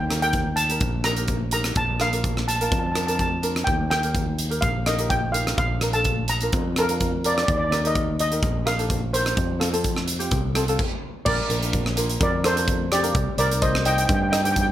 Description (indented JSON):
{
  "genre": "calypso",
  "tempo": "126 BPM",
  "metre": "4/4",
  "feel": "straight",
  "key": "Bb major",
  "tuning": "A4 = 440 Hz",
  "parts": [
    { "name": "steel pan", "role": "melody", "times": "0.0-14.7 s", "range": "G4 to Bb5", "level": "-24 LUFS", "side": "equal", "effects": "plate reverb" },
    { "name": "overdriven fingered electric bass", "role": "bass", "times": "0.0-14.7 s", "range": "Bb1 to G2", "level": "-26 LUFS", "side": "equal", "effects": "none" },
    { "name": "ukulele", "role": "accompaniment", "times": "0.1-14.7 s", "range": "C4 to Eb5", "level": "-29 LUFS", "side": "right 1 dB", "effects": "none" },
    { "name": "huge arena drum kit", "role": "drums", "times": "0.1-14.7 s", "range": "crash cymbal, hi-hat, kick drum, rim click", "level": "-25 LUFS", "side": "equal", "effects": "none" }
  ],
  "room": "light reverb",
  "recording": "none",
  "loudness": "-20 LUFS",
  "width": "side -12 dB against mid",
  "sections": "0.0-11.3 A section; 11.3-14.7 B section",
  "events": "stop 10.8-11.3",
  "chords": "0.0 Eb; 1.8 Bb; 3.7 Eb; 5.6 Bb; 7.5 Ebadd9; 9.4 F; 11.3 Bbadd9; 13.2 Cm"
}